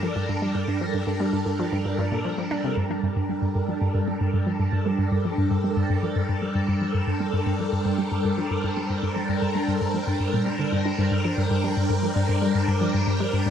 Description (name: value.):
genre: ambient, sequencer-driven space music.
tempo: 115 BPM.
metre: 4/4.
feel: straight.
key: G minor.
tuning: A4 = 440 Hz.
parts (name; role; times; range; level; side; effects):
phased string machine; sustained chords; 0.0-13.5 s; G3 to Bb4; -25 LUFS; equal; ensemble chorus, phaser.
hollow square pluck; riff; 0.0-13.5 s; G2 to D4; -25 LUFS; equal; chorus, phaser, ping-pong delay.
wind-like tuned noise texture; texture; 4.8-13.5 s; C5; -41 LUFS; right 1 dB; none.
room: wet plate reverb, RT60 2.4 s.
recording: none.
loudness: -22 LUFS.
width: side -8 dB against mid.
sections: 0.0-2.8 A section; 2.8-13.5 B section.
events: filter sweep on synth arpeggio sound 0.0-2.8, 2.8-13.5.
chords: 0.0 Gm.